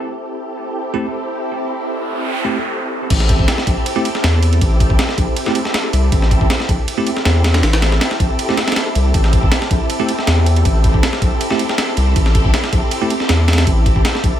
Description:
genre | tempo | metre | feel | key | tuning
drum and bass, jungle | 159 BPM | 4/4 | straight | A minor | A4 = 439 Hz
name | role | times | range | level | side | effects
soft string machine | sustained chords | 0.0-14.4 s | C4 to A4 | -21 LUFS | equal | ensemble chorus
bell-like tine electric piano | stabs | 0.9-13.1 s | A3 to G4 | -22 LUFS | right 3 dB | fast stereo tremolo, dub echo
noise sweep | sound effects | 1.8-3.1 s | none | -26 LUFS | right 2 dB | none
saturated sub bass | bass | 3.1-14.3 s | A1 to E2 | -15 LUFS | equal | none
breakbeat sampler-style drum kit | drums | 3.1-14.3 s | crash cymbal, kick drum, ride cymbal, snare drum | -16 LUFS | equal | studio reverb
room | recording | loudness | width
light reverb, digital ambience | none | -13 LUFS | side -11 dB against mid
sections
0.0-3.1 A section; 3.1-14.4 B section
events
noise sweep 1.8-3.1; drop 3.1-14.4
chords
0.0 Am7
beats
| 0.09 0.46 0.84 1.22 | 1.59 1.97 2.35 2.73 | 3.10 3.48 3.86 4.24 | 4.61 4.99 5.37 5.75 | 6.12 6.50 6.88 7.25 | 7.63 8.01 8.39 8.76 | 9.14 9.52 9.90 10.27 | 10.65 11.03 11.41 11.78 | 12.16 12.54 12.91 13.29 | 13.67 14.05

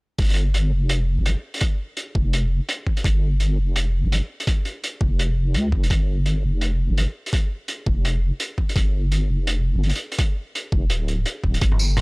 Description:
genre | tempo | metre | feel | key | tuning
half-time drum and bass | 168 BPM | 4/4 | swing 59% on 16ths, half-time | G minor | A4 = 440 Hz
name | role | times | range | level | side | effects
deep soft wobble bass | bass | 0.2-12.0 s | D1 to D2 | -20 LUFS | equal | chorus
crunchy breakbeat drum kit | drums | 0.2-12.0 s | hi-hat, tambourine, toms | -27 LUFS | equal | none
electronic kick drum | drums | 0.2-11.7 s | none | -21 LUFS | equal | overdrive
deep dark ambient pad | sustained chords | 11.8-12.0 s | Bb3 to G5 | -43 LUFS | right 3 dB | none
room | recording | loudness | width
small room ambience | dry, gritty hardware recording, transformer saturation, cassette tape | -20 LUFS | side -34 dB against mid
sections
0.2-12.0 A section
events
none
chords
none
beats
| 0.19 0.54 0.90 1.26 | 1.61 1.97 2.33 2.69 | 3.04 3.40 3.76 4.12 | 4.47 4.83 5.19 5.54 | 5.90 6.26 6.62 6.97 | 7.33 7.69 8.04 8.40 | 8.76 9.12 9.47 9.83 | 10.19 10.54 10.90 11.26 | 11.62 11.97

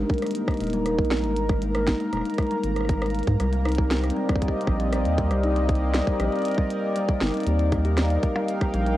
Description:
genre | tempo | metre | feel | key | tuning
IDM | 118 BPM | 4/4 | straight | Ab lydian | A4 = 440 Hz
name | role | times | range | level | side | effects
warm analog pad | sustained chords | 0.0-9.0 s | C4 to Bb5 | -28 LUFS | equal | chorus, cassette tape
kalimba | arpeggios | 0.0-8.9 s | G3 to G4 | -28 LUFS | left 1 dB | cassette tape, analog delay
round analog bass | bass | 0.0-9.0 s | Eb1 to Ab2 | -25 LUFS | equal | none
bubbling stepped-filter texture | texture | 0.0-9.0 s | Bb3 to Bb4 | -32 LUFS | right 1 dB | chorus, built-in reverb, cassette tape
electronic kick drum | drums | 0.1-8.7 s | none | -24 LUFS | equal | cassette tape
glitchy drum kit | drums | 0.1-9.0 s | hi-hat, percussion blips, rim click, snare drum | -31 LUFS | equal | cassette tape
room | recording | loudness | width
moderate studio reverb, RT60 0.5 s | home recording on cassette | -21 LUFS | side -14 dB against mid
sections
0.0-9.0 A section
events
none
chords
0.0 Absus2; 3.4 Cm; 7.5 Ebmaj7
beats
0.35 0.86 | 1.37 1.88 2.38 2.89 | 3.40 3.91 4.42 4.93 | 5.43 5.94 6.45 6.96 | 7.47 7.98 8.49

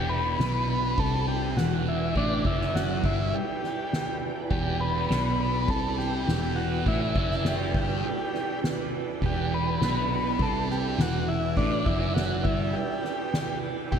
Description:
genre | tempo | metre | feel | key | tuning
psychedelic rock | 102 BPM | 4/4 | straight | E minor | A4 = 439 Hz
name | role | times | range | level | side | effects
combo organ | melody | 0.0-14.0 s | D4 to B4 | -30 LUFS | left 1 dB | ping-pong delay
string machine, violins | sustained chords | 0.0-14.0 s | E4 to G5 | -37 LUFS | right 3 dB | ensemble chorus
thick fuzz guitar | riff | 0.0-14.0 s | E2 to C4 | -31 LUFS | equal | distortion, phaser
picked electric bass | bass | 0.0-14.0 s | E1 to C2 | -30 LUFS | equal | none
tanpura | drone | 0.0-14.0 s | E2 to B3 | -40 LUFS | equal | none
soft-mallet drum kit | drums | 0.1-14.0 s | kick drum, ride cymbal, snare drum | -30 LUFS | right 1 dB | none
room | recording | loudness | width
moderate lush hall reverb, RT60 1.8 s, small room ambience | dreamy mix soaked in reverb | -24 LUFS | side -8 dB against mid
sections
0.0-14.0 A section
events
none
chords
0.0 Em7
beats
0.39 0.98 1.57 | 2.16 2.75 3.33 3.92 | 4.51 5.10 5.69 6.28 | 6.87 7.45 8.04 8.63 | 9.22 9.81 10.40 10.99 | 11.57 12.16 12.75 13.34 | 13.93

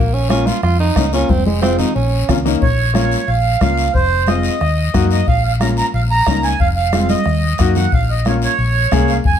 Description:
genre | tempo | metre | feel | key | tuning
latin, cumbia | 181 BPM | 4/4 | straight | Bb minor | A4 = 438 Hz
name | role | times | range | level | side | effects
growling tenor saxophone | second line | 0.0-2.4 s | Ab3 to F4 | -20 LUFS | right 4 dB | none
hollow-body short-scale fingered electric bass | bass | 0.0-9.4 s | F1 to Gb2 | -17 LUFS | equal | none
clear upright piano | accompaniment | 0.3-9.2 s | Ab3 to Ab4 | -21 LUFS | left 5 dB | none
bombo | percussion | 0.3-9.4 s | none | -19 LUFS | left 2 dB | none
congas | percussion | 0.3-9.1 s | none | -23 LUFS | right 2 dB | none
guiro | percussion | 0.3-9.4 s | none | -29 LUFS | left 6 dB | none
accordion | melody | 2.6-9.4 s | C5 to Bb5 | -18 LUFS | right 4 dB | none
room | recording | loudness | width
moderate studio reverb, RT60 0.9 s | none | -13 LUFS | side -9 dB against mid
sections
0.0-2.6 A section; 2.6-9.4 B section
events
tenor saxophone solo 0.0-2.6; drum fill 1.3-2.6, 6.9-7.9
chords
0.0 Bbm; 1.3 Fm; 2.0 Bbm; 3.9 Fm; 4.6 Ebm; 5.3 Bbm; 6.6 Fm; 7.3 Ebm; 7.9 Bbm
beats
0.30 0.63 0.96 | 1.29 1.62 1.96 2.29 | 2.62 2.95 3.28 3.62 | 3.95 4.28 4.61 4.94 | 5.27 5.61 5.94 6.27 | 6.60 6.93 7.26 7.60 | 7.93 8.26 8.59 8.92 | 9.25

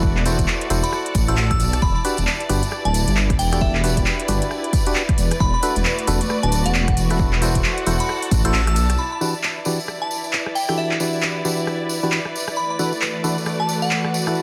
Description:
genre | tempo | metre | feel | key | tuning
UK garage, two-step garage | 134 BPM | 4/4 | swing 60% on 16ths | E minor | A4 = 442 Hz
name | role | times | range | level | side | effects
rich symphonic violin section | sustained chords | 0.0-14.4 s | D5 | -35 LUFS | equal | sidechain pumping, low-pass filter
percussive organ stab | stabs | 0.0-14.4 s | E3 to C5 | -28 LUFS | equal | chorus, dub echo
dark detuned saw bass | bass | 0.0-9.0 s | D1 to B1 | -23 LUFS | equal | none
electronic kick drum | drums | 0.0-8.4 s | none | -23 LUFS | equal | none
tambourine | percussion | 0.0-14.4 s | none | -33 LUFS | equal | none
dark studio string section | texture | 0.0-14.4 s | E3 to A5 | -30 LUFS | equal | sidechain pumping
house drum kit | drums | 0.2-14.3 s | handclaps, hi-hat, rim click | -27 LUFS | equal | none
glassy synth bell | melody | 0.8-14.1 s | E5 to E6 | -29 LUFS | equal | chorus, dub echo
room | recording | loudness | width
light reverb | dense, heavily limited modern master, vinyl crackle | -20 LUFS | mono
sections
0.0-9.0 A section; 9.0-14.4 B section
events
kick drops out 8.5-9.0; band accent 8.5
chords
0.0 F#m7b5/E; 1.8 Em7; 5.4 Bm7/E; 7.2 F#m7b5/E; 9.0 Em7; 12.6 Bm7/E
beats
| 0.03 0.48 0.93 1.37 | 1.82 2.27 2.72 3.17 | 3.61 4.06 4.51 4.96 | 5.40 5.85 6.30 6.75 | 7.20 7.64 8.09 8.54 | 8.99 9.43 9.88 10.33 | 10.78 11.22 11.67 12.12 | 12.57 13.02 13.46 13.91 | 14.36

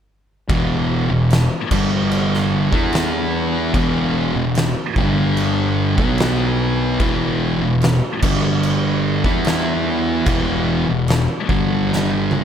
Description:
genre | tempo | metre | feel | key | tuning
stoner and doom metal | 74 BPM | 4/4 | straight | E minor | A4 = 440 Hz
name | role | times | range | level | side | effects
deep rumbling drone | sustained chords | 1.5-12.4 s | E3 to B4 | -32 LUFS | left 1 dB | none
thick fuzz guitar | riff | 0.5-12.4 s | E2 to E4 | -20 LUFS | left 8 dB | distortion
thick fuzz guitar | riff | 0.5-12.4 s | E2 to E4 | -21 LUFS | right 8 dB | distortion
fuzz fingered electric bass | bass | 0.5-12.4 s | E1 to E2 | -24 LUFS | equal | overdrive, tube saturation
oversized low-tuned drum kit | drums | 0.5-12.4 s | crash cymbal, kick drum, snare drum, toms | -22 LUFS | equal | none
room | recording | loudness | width
light reverb | faint mains hum | -16 LUFS | side -8 dB against mid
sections
0.5-12.4 A section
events
drum fill 11.9-12.4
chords
0.5 E5; 1.7 G5; 2.7 E5; 5.0 G5; 6.0 B5; 7.0 E5; 8.2 G5; 9.2 E5; 11.5 G5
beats
| 0.50 1.31 2.12 2.94 | 3.75 4.56 5.38 6.19 | 7.01 7.82 8.64 9.45 | 10.27 11.09 11.90

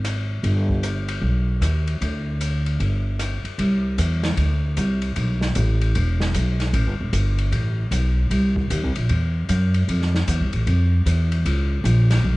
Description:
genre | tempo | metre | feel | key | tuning
jazz, small-group swing and bop | 152 BPM | 4/4 | swing 64% on 8ths | G major, C major from 3.6 s | A4 = 440 Hz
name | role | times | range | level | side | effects
upright bass | bass | 0.0-12.4 s | E1 to F#2 | -19 LUFS | equal | none
open jazz drum kit | drums | 0.0-12.2 s | hi-hat, kick drum, ride cymbal, rim click, snare drum | -29 LUFS | left 2 dB | cassette tape
room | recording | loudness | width
little or no reverb | home recording on cassette, nothing above 11.0 kHz | -19 LUFS | side -21 dB against mid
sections
0.0-3.6 A section; 3.6-12.4 B section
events
none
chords
none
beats
0.04 | 0.44 0.83 1.23 1.62 | 2.01 2.41 2.80 3.19 | 3.59 3.98 4.38 4.77 | 5.16 5.56 5.95 6.34 | 6.74 7.13 7.52 7.92 | 8.31 8.70 9.10 9.49 | 9.88 10.28 10.67 11.06 | 11.46 11.85 12.24

